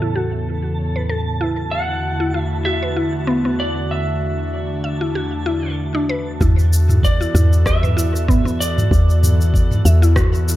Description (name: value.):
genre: organic downtempo.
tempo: 96 BPM.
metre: 4/4.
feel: swing 55% on 16ths.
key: unclear.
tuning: A4 = 441 Hz.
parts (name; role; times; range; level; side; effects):
electric slide guitar; melody; 0.0-9.8 s; A4 to F#5; -26 LUFS; right 2 dB; analog delay.
airy breathy pad; sustained chords; 0.0-10.6 s; E2 to A4; -23 LUFS; equal; chorus, sidechain pumping.
mallet-like synth pluck; arpeggios; 0.0-10.6 s; B3 to E5; -24 LUFS; equal; chorus, analog delay.
twinkling granular texture; texture; 0.0-6.4 s; A5; -34 LUFS; right 5 dB; built-in reverb.
woody FM bass; bass; 6.4-10.6 s; E2; -15 LUFS; equal; sidechain pumping.
electronic kick drum; drums; 6.4-10.3 s; none; -17 LUFS; equal; none.
organic electronic drum kit; drums; 6.4-10.6 s; cabasa, rim click, toms; -21 LUFS; equal; none.
room: light reverb.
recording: echo-heavy mix, low-pass filter.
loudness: -15 LUFS.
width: side -15 dB against mid.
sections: 0.0-6.4 A section; 6.4-10.6 B section.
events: filter sweep on analog synth pad 0.0-6.4; filter sweep 0.0-6.4.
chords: 0.0 A/E; 1.4 Dadd9/E; 6.4 E9sus4.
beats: 0.16 0.79 | 1.41 2.04 2.66 3.29 | 3.91 4.54 5.16 5.79 | 6.41 7.04 7.66 8.29 | 8.91 9.54 10.16.